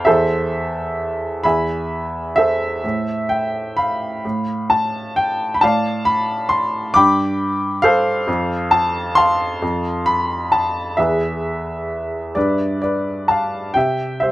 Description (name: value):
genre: classical, lyrical solo piano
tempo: 44 BPM (dotted quarters)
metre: 6/8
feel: rubato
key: A minor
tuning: A4 = 439 Hz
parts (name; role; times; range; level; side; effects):
- warm upright piano; solo; 0.0-14.3 s; E2 to D6; -16 LUFS; equal; none
room: little or no reverb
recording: close, detailed microphones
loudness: -17 LUFS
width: side -16 dB against mid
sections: 0.0-13.8 A section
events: none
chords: 0.1 Am/E; 1.4 E; 2.8 Am; 4.2 F/A; 5.6 Dm/A; 7.0 G; 8.3 F; 11.0 E; 12.4 G7; 13.8 C